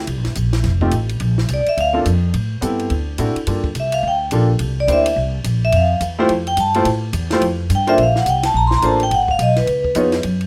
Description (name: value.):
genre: jazz, small-group swing and bop.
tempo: 212 BPM.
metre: 4/4.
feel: swing 62% on 8ths.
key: F major.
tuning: A4 = 440 Hz.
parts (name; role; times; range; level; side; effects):
upright bass; bass; 0.0-10.5 s; F1 to A2; -22 LUFS; equal; none.
compact cocktail drum kit; drums; 0.1-10.5 s; hi-hat, kick drum, ride cymbal, snare drum; -31 LUFS; equal; none.
clear concert grand piano; accompaniment; 0.8-10.1 s; A3 to Db5; -22 LUFS; equal; none.
vibraphone with medium hard mallets; melody; 1.5-10.2 s; Cb5 to C6; -19 LUFS; equal; none.
room: light reverb.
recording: none.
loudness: -17 LUFS.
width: mono.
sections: 0.0-8.0 A section; 8.0-10.5 A section.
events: vibraphone solo 0.0-10.5.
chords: 0.1 C5; 0.6 F7; 1.2 Bb; 2.3 Am7; 2.9 D7; 3.5 Gm7; 4.6 C7; 5.7 Fmaj7; 8.0 Bbmaj7; 9.1 Abm; 9.7 Db9.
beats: | 0.08 0.36 0.64 0.93 | 1.21 1.49 1.77 2.06 | 2.34 2.62 2.90 3.18 | 3.47 3.75 4.03 4.31 | 4.60 4.88 5.16 5.44 | 5.72 6.01 6.29 6.57 | 6.86 7.14 7.42 7.70 | 7.98 8.27 8.55 8.83 | 9.11 9.40 9.68 9.96 | 10.24.